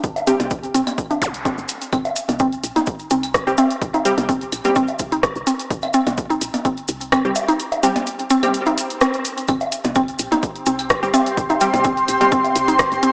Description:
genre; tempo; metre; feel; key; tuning
minimal techno; 127 BPM; 4/4; swing 53% on 16ths; unclear; A4 = 442 Hz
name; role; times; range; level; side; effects
woody FM bass; bass; 0.0-13.0 s; G1 to C2; -29 LUFS; equal; sidechain pumping
electronic kick drum; drums; 0.0-12.9 s; none; -25 LUFS; equal; none
punchy analog drum machine; drums; 0.0-13.1 s; hi-hat, rim click; -23 LUFS; equal; none
maracas; percussion; 0.0-13.1 s; none; -31 LUFS; equal; none
woodblock, percussion blips and claves; percussion; 0.2-12.5 s; none; -24 LUFS; equal; tape echo
mallet-like synth pluck; riff; 0.3-13.1 s; C4 to Eb4; -20 LUFS; equal; chorus, sidechain pumping, cassette tape, analog delay
wavetable chord stab; stabs; 0.3, 3.5-12.3 s; G3 to G4; -22 LUFS; equal; cassette tape, tape echo
zap and swell; sound effects; 1.2-1.3, 8.7-9.5 s; none; -28 LUFS; equal; none
granular cloud pad; texture; 10.6-13.1 s; C4 to C6; -18 LUFS; equal; built-in reverb, sidechain pumping, cassette tape
room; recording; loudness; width
moderate spring reverb, RT60 2.3 s; home recording on cassette, small speaker sound; -16 LUFS; side -33 dB against mid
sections
0.0-9.5 A section; 9.5-13.1 B section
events
filter sweep on synth arpeggio sound 0.0-9.5; swell 8.7-9.5; drop 9.5-13.1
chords
0.0 C5

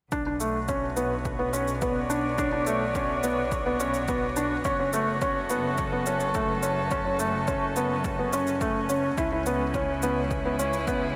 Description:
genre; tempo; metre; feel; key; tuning
piano and strings electronica; 106 BPM; 4/4; straight; B minor; A4 = 440 Hz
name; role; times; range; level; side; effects
muted string quartet; sustained chords; 0.1-11.2 s; C#3 to D5; -32 LUFS; equal; none
felt-muted upright piano; riff; 0.1-11.0 s; A3 to E4; -29 LUFS; equal; delay
clear studio double bass section; bass; 0.1-11.2 s; F#1 to C#2; -36 LUFS; equal; sidechain pumping
electronic kick drum; drums; 0.1-11.0 s; none; -36 LUFS; equal; overdrive
shaker; drums; 0.1-11.0 s; none; -44 LUFS; equal; overdrive
room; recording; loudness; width
wet huge ambient reverb, RT60 8.2 s; dreamy mix soaked in reverb; -27 LUFS; mono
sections
0.1-11.2 A section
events
none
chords
0.1 Bm; 4.7 F#m; 9.2 C#m

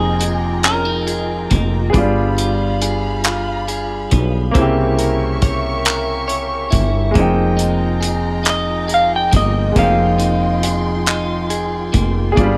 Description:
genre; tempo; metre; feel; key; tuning
slow six-eight R&B; 46 BPM (dotted quarters); 6/8; straight; F minor; A4 = 439 Hz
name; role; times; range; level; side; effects
semi-hollow electric guitar; melody; 0.0-1.6, 8.5-11.5 s; Ab4 to G5; -22 LUFS; equal; lush chorus
clean electric guitar; second line; 0.0-12.6 s; F3 to Db5; -25 LUFS; equal; spring reverb
warm concert grand piano; accompaniment; 0.0-12.6 s; Db3 to G5; -24 LUFS; equal; none
warm studio string section; sustained chords; 0.0-12.6 s; F4 to Db6; -29 LUFS; equal; none
woody fretless electric bass; bass; 0.0-12.6 s; F1 to C2; -22 LUFS; equal; none
warm soul drum kit; drums; 0.2-12.6 s; handclaps, hi-hat, kick drum; -20 LUFS; equal; none
room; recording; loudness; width
light reverb; none; -17 LUFS; mono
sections
0.0-12.6 A section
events
none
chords
0.0 Fm11; 1.9 G7b9; 4.5 C7b9; 7.2 Fm11

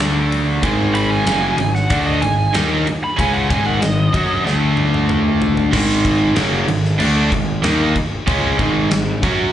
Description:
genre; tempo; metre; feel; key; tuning
hard rock; 94 BPM; 4/4; straight; unclear; A4 = 438 Hz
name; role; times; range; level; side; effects
biting overdriven guitar; riff; 0.0-9.5 s; Gb2 to Gb4; -25 LUFS; left 2 dB; slapback echo
cranked stack guitar; riff; 0.0-9.5 s; Gb2 to Gb4; -20 LUFS; right 5 dB; overdrive
sludgy distorted guitar; riff; 0.0-9.5 s; Gb2 to Gb4; -24 LUFS; left 9 dB; overdrive, slapback echo
fuzz picked electric bass; bass; 0.0-9.5 s; Gb1 to Gb2; -20 LUFS; equal; overdrive
huge arena drum kit; drums; 0.0-9.4 s; crash cymbal, kick drum, ride cymbal, snare drum, toms; -22 LUFS; left 1 dB; none
biting lead guitar; melody; 0.9-4.4 s; Eb5 to Cb6; -22 LUFS; right 2 dB; overdrive, slapback echo
room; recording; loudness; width
light reverb; live gig heard through the venue's PA, club reverb, nothing above 10.5 kHz; -14 LUFS; side -11 dB against mid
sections
0.0-5.7 A section; 5.7-9.5 B section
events
lead electric guitar solo 0.0-5.7; drum fill 4.5-5.7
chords
0.0 D5; 0.6 Ab5; 4.5 D5; 5.7 Ab5

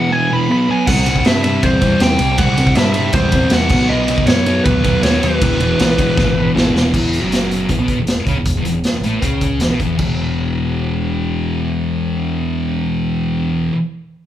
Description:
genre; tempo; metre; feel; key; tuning
garage rock duo or trio; 158 BPM; 4/4; straight; unclear; A4 = 441 Hz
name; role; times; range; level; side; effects
fuzz lead guitar; melody; 0.0-6.5 s; B4 to B5; -19 LUFS; right 1 dB; distortion
thick fuzz guitar; riff; 0.0-13.8 s; E2 to C#4; -17 LUFS; left 1 dB; distortion
growling picked electric bass; bass; 0.9-13.7 s; E1 to G2; -22 LUFS; equal; overdrive
raw garage drum kit; drums; 0.9-10.1 s; crash cymbal, hi-hat, kick drum, ride cymbal, snare drum; -17 LUFS; equal; none
room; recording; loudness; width
light reverb; band playing live in one room; -13 LUFS; side -12 dB against mid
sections
0.0-6.9 A section; 6.9-10.0 B section; 10.0-13.1 C section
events
drum fill 6.2-6.9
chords
0.5 B5; 0.9 C; 3.7 B; 5.4 E; 6.9 E5

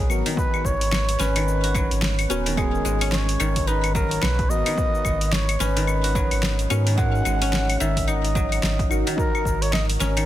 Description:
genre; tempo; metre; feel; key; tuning
organic downtempo; 109 BPM; 4/4; swing 60% on 16ths; G# minor; A4 = 440 Hz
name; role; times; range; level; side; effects
trumpet with bucket mute; melody; 0.0-10.3 s; G#4 to F#5; -27 LUFS; right 1 dB; vintage 12-bit sampler grit, digital delay
deep mellow chord stab; accompaniment; 0.0-10.3 s; B3 to B4; -32 LUFS; left 1 dB; chorus, phaser, sidechain pumping, digital delay
guzheng; arpeggios; 0.0-10.3 s; D#3 to F#4; -27 LUFS; left 2 dB; digital delay
warm sub bass; bass; 0.0-10.3 s; D#1 to G#2; -24 LUFS; equal; sidechain pumping
deep house drum kit; drums; 0.0-10.3 s; cabasa, claves, hi-hat, snare drum; -27 LUFS; left 1 dB; overdrive, studio reverb
electronic kick drum; drums; 0.4-9.6 s; none; -26 LUFS; equal; overdrive, studio reverb
room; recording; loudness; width
light reverb; dense, heavily limited modern master; -19 LUFS; side -13 dB against mid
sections
0.0-10.3 A section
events
none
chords
0.0 G#m7; 7.0 D#m

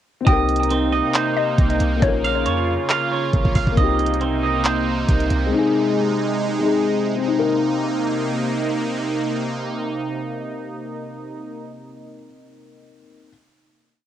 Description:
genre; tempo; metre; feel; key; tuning
hip hop, trap; 137 BPM; 4/4; half-time; C phrygian; A4 = 438 Hz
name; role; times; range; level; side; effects
dark concert grand piano; accompaniment; 0.2-13.3 s; Ab3 to Bb4; -24 LUFS; left 7 dB; cassette tape
mallet-like synth pluck; second line; 0.3-3.7 s; Db5 to G5; -26 LUFS; left 7 dB; chorus, cassette tape, tape echo
sweeping resonant pad; sustained chords; 0.3-11.5 s; C3 to F4; -23 LUFS; right 2 dB; chorus, cassette tape
twangy electric guitar; arpeggios; 0.3-5.5 s; C4 to F5; -23 LUFS; right 8 dB; cassette tape, tape echo
clean 808-style bass; bass; 0.3-5.5 s; Bb1 to F2; -23 LUFS; right 1 dB; none
trap drum kit; drums; 0.3-5.4 s; handclaps, hi-hat, kick drum; -19 LUFS; right 1 dB; vintage 12-bit sampler grit
room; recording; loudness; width
light reverb; home recording on cassette; -18 LUFS; side -10 dB against mid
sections
0.3-7.3 hook; 7.3-10.8 final chord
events
none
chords
0.3 Cm7; 2.0 Bbm; 3.8 Cm7; 5.5 Ab; 7.3 Cm7

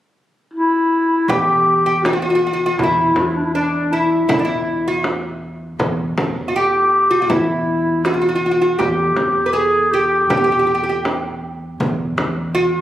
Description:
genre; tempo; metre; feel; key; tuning
Arabic maqam ensemble; 80 BPM; 4/4; straight; E maqam saba; A4 = 440 Hz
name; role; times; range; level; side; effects
breathy clarinet; melody; 0.5-12.8 s; D4 to G#4; -16 LUFS; left 1 dB; none
oud; second line; 1.3-12.8 s; D4 to B4; -20 LUFS; right 2 dB; none
upright bass; bass; 1.3-12.8 s; E2; -26 LUFS; equal; none
frame drum; percussion; 1.3-12.4 s; none; -23 LUFS; left 1 dB; none
room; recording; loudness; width
moderate recital hall reverb, RT60 1.4 s; recorded on a phone in the room, club reverb, compression; -15 LUFS; side -12 dB against mid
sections
0.0-1.3 A section; 1.3-12.8 B section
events
none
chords
none

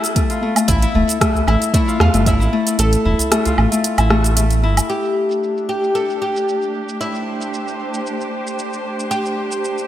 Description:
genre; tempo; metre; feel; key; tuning
organic downtempo; 114 BPM; 4/4; straight; A minor; A4 = 439 Hz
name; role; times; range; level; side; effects
Celtic harp; arpeggios; 0.0-7.7 s; A3 to F4; -19 LUFS; left 3 dB; digital delay
organic electronic drum kit; drums; 0.0-9.9 s; hi-hat, rim click, shaker, woodblock; -21 LUFS; right 2 dB; low-pass filter on snare, low-pass filter on hats, low-pass filter on perc, gated reverb
electronic kick drum; drums; 0.2-2.4 s; none; -19 LUFS; right 1 dB; none
oud; melody; 0.7-9.9 s; E4 to A4; -22 LUFS; equal; digital delay
round analog bass; bass; 0.7-4.8 s; E1 to E2; -16 LUFS; right 1 dB; none
udu; percussion; 0.9-3.6 s; none; -24 LUFS; right 2 dB; none
muted chamber string section; sustained chords; 4.9-9.9 s; A3 to C5; -25 LUFS; right 1 dB; vintage 12-bit sampler grit, sidechain pumping
room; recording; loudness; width
moderate lush hall reverb, RT60 2.3 s; bright 1980s-style digital production; -15 LUFS; side -12 dB against mid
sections
0.0-4.9 A section; 4.9-9.9 B section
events
kick drops out 2.8-4.9; filter sweep on drum 4.9-9.9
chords
0.0 Fmaj7; 4.9 Am7

